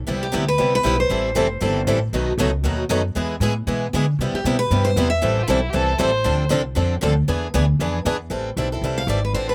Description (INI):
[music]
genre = acoustic string swing (jazz manouche)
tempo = 233 BPM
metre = 4/4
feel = swing 58% on 8ths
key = A minor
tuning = A4 = 440 Hz
[part]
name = upright bass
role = bass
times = 0.0-9.5 s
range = F1 to D3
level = -25 LUFS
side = equal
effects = none
[part]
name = picked steel-string acoustic guitar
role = accompaniment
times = 0.1-8.2 s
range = B2 to B4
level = -26 LUFS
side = equal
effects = none
[part]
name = picked swing-style acoustic guitar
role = accompaniment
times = 0.1-9.5 s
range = B2 to A4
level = -28 LUFS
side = equal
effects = none
[part]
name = picked steel-string acoustic guitar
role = melody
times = 0.2-2.0, 4.3-6.1, 9.0-9.5 s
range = G4 to F5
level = -25 LUFS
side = equal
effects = none
[part]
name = warm violin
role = second line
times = 5.4-6.5 s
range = E4 to C5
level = -26 LUFS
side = equal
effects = none
[sound]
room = little or no reverb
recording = recorded outdoors, with no room sound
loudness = -21 LUFS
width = mono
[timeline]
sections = 0.1-8.3 A section; 8.3-9.5 B section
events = steel-string acoustic guitar solo 8.3-9.5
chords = 0.1 Cmaj7; 1.1 Am7; 2.1 B7; 3.2 E; 4.2 Cmaj7; 5.2 Am7; 6.2 Dm7; 7.3 E7; 8.3 Am7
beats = | 0.07 0.33 0.59 0.84 | 1.10 1.36 1.62 1.88 | 2.13 2.39 2.65 2.90 | 3.16 3.42 3.68 3.93 | 4.19 4.45 4.71 4.96 | 5.22 5.48 5.74 5.99 | 6.25 6.51 6.76 7.02 | 7.28 7.54 7.79 8.05 | 8.31 8.56 8.82 9.08 | 9.34